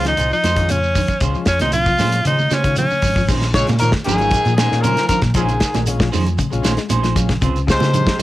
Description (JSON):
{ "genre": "afrobeat", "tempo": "116 BPM", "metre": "4/4", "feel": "straight", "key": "Bb minor", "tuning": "A4 = 440 Hz", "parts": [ { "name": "edgy tenor saxophone", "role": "melody", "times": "0.0-3.3 s", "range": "Db4 to F4", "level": "-18 LUFS", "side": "equal", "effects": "cassette tape" }, { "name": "overdriven combo organ", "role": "accompaniment", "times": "0.0-7.9 s", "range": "Ab3 to F4", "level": "-28 LUFS", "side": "left 6 dB", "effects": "cassette tape" }, { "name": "clean electric guitar", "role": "arpeggios", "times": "0.0-8.2 s", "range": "C3 to Ab3", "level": "-26 LUFS", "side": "left 6 dB", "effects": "cassette tape" }, { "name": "semi-hollow electric guitar", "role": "stabs", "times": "0.0-8.2 s", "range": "C4 to C5", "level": "-27 LUFS", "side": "right 6 dB", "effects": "lush chorus, cassette tape" }, { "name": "hollow-body short-scale fingered electric bass", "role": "bass", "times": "0.0-8.2 s", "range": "Ab1 to Db3", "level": "-20 LUFS", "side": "equal", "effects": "none" }, { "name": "damped 70s drum kit", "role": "drums", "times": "0.0-8.2 s", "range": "crash cymbal, hi-hat, kick drum, snare drum", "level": "-20 LUFS", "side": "equal", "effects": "cassette tape" }, { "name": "shekere", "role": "percussion", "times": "0.1-8.2 s", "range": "none", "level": "-28 LUFS", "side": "right 4 dB", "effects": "none" }, { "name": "congas", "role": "percussion", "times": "0.4-8.2 s", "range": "none", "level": "-26 LUFS", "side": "right 6 dB", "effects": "none" }, { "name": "clear trumpet", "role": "melody", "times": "3.5-8.2 s", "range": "Ab4 to Db5", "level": "-20 LUFS", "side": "left 1 dB", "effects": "cassette tape, analog delay" }, { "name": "breathy baritone saxophone", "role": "second line", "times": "3.6-8.2 s", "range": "Ab2 to Db3", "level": "-28 LUFS", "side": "left 6 dB", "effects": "cassette tape" }, { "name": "breathy trombone", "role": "second line", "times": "3.6-8.2 s", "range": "Eb3 to Ab3", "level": "-29 LUFS", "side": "right 6 dB", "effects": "cassette tape" } ], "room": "studio ambience", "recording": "home recording on cassette", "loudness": "-14 LUFS", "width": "side -15 dB against mid", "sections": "0.0-3.3 A section; 3.3-8.2 B section", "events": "tenor saxophone solo 0.0-3.3", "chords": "0.0 Bbm11 (rootless); 3.3 Bbm11; 7.4 Dbmaj7", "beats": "0.19 0.70 | 1.22 1.74 2.25 2.77 | 3.29 3.81 4.32 4.84 | 5.35 5.87 6.39 6.90 | 7.42 7.94" }